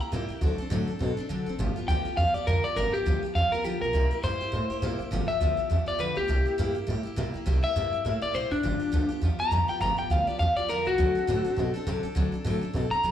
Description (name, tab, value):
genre	rockabilly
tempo	204 BPM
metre	4/4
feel	swing 58% on 8ths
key	G mixolydian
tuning	A4 = 440 Hz
part	electric guitar at the edge of break-up	melody	0.0-13.1 s	D4 to Bb5	-27 LUFS	left 1 dB	plate reverb, slapback echo, tape echo
part	picked steel-string acoustic guitar	accompaniment	0.0-13.1 s	G2 to A4	-32 LUFS	equal	plate reverb, slapback echo
part	upright bass	bass	0.0-13.1 s	F#1 to C3	-28 LUFS	right 1 dB	none
room	light reverb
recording	live gig heard through the venue's PA, club ambience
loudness	-24 LUFS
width	side -10 dB against mid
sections	0.0-1.6 A section; 1.6-13.1 B section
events	clean electric guitar solo 1.6-13.1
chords	0.4 D7; 1.6 G7; 3.9 C7; 5.1 G7; 6.3 C7; 8.6 G7; 11.0 D7